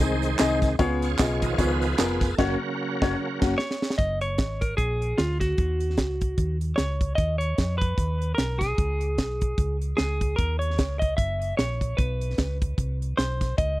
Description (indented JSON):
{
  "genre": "uptempo gospel",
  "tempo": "150 BPM",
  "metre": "4/4",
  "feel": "swing 58% on 8ths",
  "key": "F# major",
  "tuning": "A4 = 443 Hz",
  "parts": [
    { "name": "clear upright piano", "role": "accompaniment", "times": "0.0-3.5 s", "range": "C#3 to D#5", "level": "-26 LUFS", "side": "left 3 dB", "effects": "none" },
    { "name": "bright tonewheel organ", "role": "sustained chords", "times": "0.0-3.6 s", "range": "C#3 to D#5", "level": "-28 LUFS", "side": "right 2 dB", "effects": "slow rotary speaker, overdrive, chorus vibrato" },
    { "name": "hollow-body short-scale fingered electric bass", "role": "bass", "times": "0.0-13.8 s", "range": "E#1 to E#2", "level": "-27 LUFS", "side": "equal", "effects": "none" },
    { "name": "tight funk drum kit", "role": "drums", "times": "0.0-13.7 s", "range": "crash cymbal, hi-hat, kick drum, snare drum", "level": "-25 LUFS", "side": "equal", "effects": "none" },
    { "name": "tambourine and handclaps", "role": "percussion", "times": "0.2-2.3 s", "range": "none", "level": "-34 LUFS", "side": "right 5 dB", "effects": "none" },
    { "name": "clean electric guitar", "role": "melody", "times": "3.6-13.8 s", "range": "E#4 to E5", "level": "-29 LUFS", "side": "equal", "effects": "harmonic tremolo, tape echo" }
  ],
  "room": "studio reverb",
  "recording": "dry, close 1970s-style studio recording",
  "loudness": "-23 LUFS",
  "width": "side -17 dB against mid",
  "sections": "0.0-4.0 A section; 4.0-13.8 B section",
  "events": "tonewheel organ solo 0.0-4.0; band accent 2.4-4.0; drum fill 3.2-4.0",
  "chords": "0.0 G#; 0.8 C#7; 2.4 F#; 4.0 F#5; 4.8 A#7; 5.6 C#sus2; 7.2 Badd9(#11); 8.8 C#5; 10.4 A#madd11; 11.2 F#7; 12.0 Bsus2; 12.8 N.C."
}